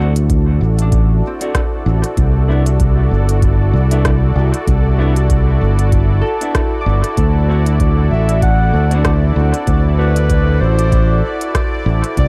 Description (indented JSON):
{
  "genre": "ambient dub",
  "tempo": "96 BPM",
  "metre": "4/4",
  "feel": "swing 57% on 16ths",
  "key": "D mixolydian",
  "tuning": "A4 = 440 Hz",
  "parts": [
    { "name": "warm analog pad", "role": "sustained chords", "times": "0.0-12.3 s", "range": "E4 to D5", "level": "-25 LUFS", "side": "equal", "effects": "chorus" },
    { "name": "mellow electric guitar", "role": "stabs", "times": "0.0-10.1 s", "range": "B3 to F#4", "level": "-30 LUFS", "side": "equal", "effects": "dub echo" },
    { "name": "fingered electric bass", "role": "bass", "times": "0.0-12.3 s", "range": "G1 to D2", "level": "-15 LUFS", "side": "equal", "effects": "none" },
    { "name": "organic electronic drum kit", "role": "drums", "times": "0.2-12.3 s", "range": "hi-hat, rim click", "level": "-28 LUFS", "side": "equal", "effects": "dub echo" },
    { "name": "electronic kick drum", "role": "drums", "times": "0.3-12.3 s", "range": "none", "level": "-20 LUFS", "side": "equal", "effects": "overdrive" },
    { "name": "Celtic harp", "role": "arpeggios", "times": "0.8-12.3 s", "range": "C4 to D6", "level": "-30 LUFS", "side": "equal", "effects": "dub echo" },
    { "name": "bubbling stepped-filter texture", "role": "texture", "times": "7.7-12.3 s", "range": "D5", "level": "-30 LUFS", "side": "equal", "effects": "chorus, built-in reverb" },
    { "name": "warm clarinet", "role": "melody", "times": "8.1-12.3 s", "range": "B4 to F#5", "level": "-24 LUFS", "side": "equal", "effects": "dub echo" }
  ],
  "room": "digital ambience",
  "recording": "echo-heavy mix",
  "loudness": "-14 LUFS",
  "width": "mono",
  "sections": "0.0-12.3 A section",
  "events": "none",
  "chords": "0.0 D7; 2.2 Cmaj9; 7.2 D7",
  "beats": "0.30 0.92 1.55 | 2.17 2.80 3.42 4.05 | 4.67 5.30 5.92 6.55 | 7.17 7.80 8.42 9.05 | 9.67 10.30 10.92 11.55 | 12.17"
}